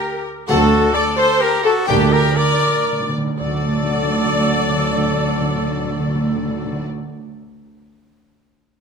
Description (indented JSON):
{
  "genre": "quick classical-period movement for symphony orchestra",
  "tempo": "113-132 BPM",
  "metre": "3/4",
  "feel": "rubato",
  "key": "unclear",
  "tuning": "A4 = 440 Hz",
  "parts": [
    { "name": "bright oboe", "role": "second line", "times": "0.0-6.9 s", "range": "G4 to D5", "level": "-28 LUFS", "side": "equal", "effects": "none" },
    { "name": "rich studio violin section", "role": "second line", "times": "0.0-6.8 s", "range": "G4 to D5", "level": "-27 LUFS", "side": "left 3 dB", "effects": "none" },
    { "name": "silver concert flute", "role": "second line", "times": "0.0-6.8 s", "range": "D5 to D6", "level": "-26 LUFS", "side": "left 3 dB", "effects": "none" },
    { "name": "rich studio viola section", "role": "accompaniment", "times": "0.0-6.8 s", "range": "G4 to D5", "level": "-21 LUFS", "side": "left 1 dB", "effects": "none" },
    { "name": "mellow trumpet", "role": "stabs", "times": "0.0-6.8 s", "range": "D4 to Bb4", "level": "-24 LUFS", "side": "right 1 dB", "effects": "none" },
    { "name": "rich studio violin section", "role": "melody", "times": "0.5-6.8 s", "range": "F#4 to G5", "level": "-30 LUFS", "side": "left 6 dB", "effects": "none" },
    { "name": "mellow French horn section", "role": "sustained chords", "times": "0.5-6.8 s", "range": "F#3 to D4", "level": "-28 LUFS", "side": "left 6 dB", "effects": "none" },
    { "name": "rich studio cello section", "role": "bass", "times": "0.5-6.8 s", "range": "D2", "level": "-25 LUFS", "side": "right 4 dB", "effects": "none" },
    { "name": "rich studio double bass section", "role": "bass", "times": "0.5-6.8 s", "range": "D2", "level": "-24 LUFS", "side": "right 4 dB", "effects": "none" },
    { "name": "timpani", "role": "percussion", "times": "0.5-6.9 s", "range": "D3", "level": "-24 LUFS", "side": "right 1 dB", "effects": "none" }
  ],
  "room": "wet recital hall reverb, RT60 1.6 s",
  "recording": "none",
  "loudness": "-15 LUFS",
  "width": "side -6 dB against mid",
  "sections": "0.0-3.4 A section; 3.4-6.5 B section",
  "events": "slowing down 0.0-3.4; timpani fill 1.9-3.4",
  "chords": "0.5 D7; 1.9 Gm/D; 3.4 D"
}